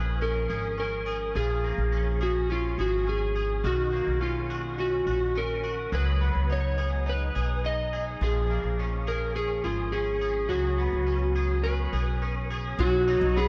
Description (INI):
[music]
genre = dream pop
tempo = 105 BPM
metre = 4/4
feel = straight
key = unclear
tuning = A4 = 436 Hz
[part]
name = electric slide guitar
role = melody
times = 0.0-13.5 s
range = E#4 to D#5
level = -31 LUFS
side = equal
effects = tape echo
[part]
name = electric guitar at the edge of break-up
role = arpeggios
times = 0.0-13.5 s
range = D#3 to G#4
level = -36 LUFS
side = equal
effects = ensemble chorus, tape echo
[part]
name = upright bass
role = bass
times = 0.0-13.5 s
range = G#1 to C#2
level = -31 LUFS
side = equal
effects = none
[sound]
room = light reverb, studio reverb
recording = dark, warm production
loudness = -27 LUFS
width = mono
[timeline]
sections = 0.0-12.8 A section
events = none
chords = 0.0 A#m7; 3.6 Bmaj9; 5.9 C#9sus4; 8.2 A#m7; 10.5 C#7sus4; 12.8 B6